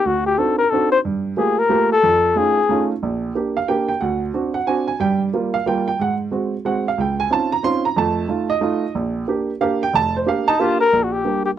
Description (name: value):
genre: jazz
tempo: 182 BPM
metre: 3/4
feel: swing 63% on 8ths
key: Bb major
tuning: A4 = 438 Hz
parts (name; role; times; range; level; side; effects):
- mellow flugelhorn; melody; 0.0-2.9, 10.5-11.5 s; Eb4 to C5; -16 LUFS; left 4 dB; none
- warm baby grand piano; accompaniment; 0.1-11.5 s; F1 to C6; -19 LUFS; right 5 dB; none
room: light reverb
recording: dry, close 1970s-style studio recording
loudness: -17 LUFS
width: side -10 dB against mid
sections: 0.0-3.0 A section; 3.0-10.9 A section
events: flugelhorn solo 0.0-3.0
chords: 0.0 D7b9; 1.0 Gm9; 2.0 F7alt; 3.0 Bb6; 4.0 D7; 5.0 Gm7; 6.0 Ab7; 7.0 Dbmaj9; 8.0 F7; 8.9 Bb6